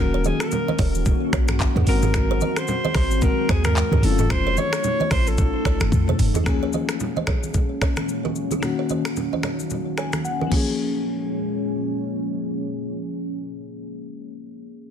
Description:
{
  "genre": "afrobeats",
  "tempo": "111 BPM",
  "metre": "4/4",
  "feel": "swing 58% on 16ths",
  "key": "Bb minor",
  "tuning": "A4 = 440 Hz",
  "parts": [
    { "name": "breathy alto saxophone", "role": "melody", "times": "0.0-6.2 s", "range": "Ab4 to Db5", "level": "-27 LUFS", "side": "equal", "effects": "ping-pong delay" },
    { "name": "crystalline FM electric piano", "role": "accompaniment", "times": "0.0-14.9 s", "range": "Eb3 to Ab5", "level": "-28 LUFS", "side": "left 7 dB", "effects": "chorus, low-pass filter" },
    { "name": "deep dark ambient pad", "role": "sustained chords", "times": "0.1-14.0 s", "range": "Eb2 to Gb4", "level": "-28 LUFS", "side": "equal", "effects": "chorus, built-in reverb, low-pass filter" },
    { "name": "clean 808-style bass", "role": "bass", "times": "0.0-6.3 s", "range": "Eb1 to F2", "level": "-22 LUFS", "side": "equal", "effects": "none" },
    { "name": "kalimba", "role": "riff", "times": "0.1-10.6 s", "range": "F4 to Eb5", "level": "-32 LUFS", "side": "right 9 dB", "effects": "low-pass filter, ping-pong delay" },
    { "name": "afro-pop drum kit", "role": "drums", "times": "0.2-10.7 s", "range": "crash cymbal, finger snaps, handclaps, hi-hat, kick drum, rim click, shaker, toms", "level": "-23 LUFS", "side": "equal", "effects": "vintage 12-bit sampler grit, soft clipping on snare" },
    { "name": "congas", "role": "percussion", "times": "0.3-11.0 s", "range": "none", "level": "-30 LUFS", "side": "right 3 dB", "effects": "none" }
  ],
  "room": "little or no reverb",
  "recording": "dense, heavily limited modern master",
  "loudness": "-20 LUFS",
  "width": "side -8 dB against mid",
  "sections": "0.0-6.5 A section; 6.5-10.8 B section; 10.8-14.9 C section",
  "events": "drum fill 5.9-6.5; FM electric piano fill 9.7-10.8",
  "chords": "0.0 Ebm7; 1.9 Ab7; 4.0 F7b9b13; 6.5 Bbm7; 8.6 Ebm7; 10.5 Bbm7"
}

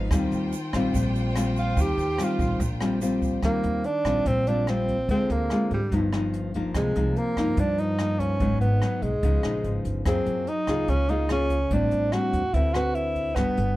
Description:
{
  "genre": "bossa nova",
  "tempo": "145 BPM",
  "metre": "4/4",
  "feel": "straight",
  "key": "Eb major",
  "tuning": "A4 = 440 Hz",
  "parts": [
    { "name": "nylon-string guitar", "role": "accompaniment", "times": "0.0-13.8 s", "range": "G2 to B4", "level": "-27 LUFS", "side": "left 2 dB", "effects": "none" },
    { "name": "bright studio violin section", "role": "sustained chords", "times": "0.0-3.4 s", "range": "F4 to G5", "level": "-37 LUFS", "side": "equal", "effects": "none" },
    { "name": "upright bass", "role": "bass", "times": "0.0-13.8 s", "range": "G1 to Ab2", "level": "-28 LUFS", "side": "equal", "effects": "none" },
    { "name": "jazz brush drum kit", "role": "drums", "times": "0.1-13.7 s", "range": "hi-hat, kick drum, rim click", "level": "-31 LUFS", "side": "equal", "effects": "none" },
    { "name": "egg shaker", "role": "percussion", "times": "0.1-3.4 s", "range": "none", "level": "-46 LUFS", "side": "right 9 dB", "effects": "none" },
    { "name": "breathy tenor saxophone", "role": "melody", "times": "1.6-13.8 s", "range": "G3 to G4", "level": "-26 LUFS", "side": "right 1 dB", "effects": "none" }
  ],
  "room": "light reverb",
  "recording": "dark, warm production",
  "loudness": "-22 LUFS",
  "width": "side -16 dB against mid",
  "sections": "0.0-3.4 A section; 3.4-13.8 B section",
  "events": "tenor saxophone solo 0.0-3.4",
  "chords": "0.1 Eb69; 5.1 Dm7b5; 5.9 G7alt; 6.7 Cm7; 8.4 Abm7; 9.2 Db9; 10.1 Gbmaj9; 11.7 Am7; 12.5 D13"
}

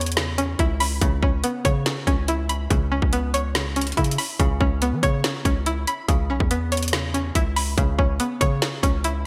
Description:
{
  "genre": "hip hop, trap",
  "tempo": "142 BPM",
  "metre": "4/4",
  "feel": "half-time",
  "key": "C# minor",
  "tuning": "A4 = 440 Hz",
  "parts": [
    { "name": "string-like resonator pluck", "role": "arpeggios", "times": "0.0-9.3 s", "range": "C#3 to B5", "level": "-27 LUFS", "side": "equal", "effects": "chorus, digital delay" },
    { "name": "long sustained 808-style bass", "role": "bass", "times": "0.0-9.3 s", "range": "B1 to E3", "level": "-27 LUFS", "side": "equal", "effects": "none" },
    { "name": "trap drum kit", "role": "drums", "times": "0.0-9.1 s", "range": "hi-hat, kick drum, snare drum", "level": "-25 LUFS", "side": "equal", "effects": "none" }
  ],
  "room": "moderate lush hall reverb, RT60 2.0 s",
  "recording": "bright 1980s-style digital production",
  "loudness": "-22 LUFS",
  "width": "mono",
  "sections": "0.0-9.3 A section",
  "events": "none",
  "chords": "0.0 C#m7"
}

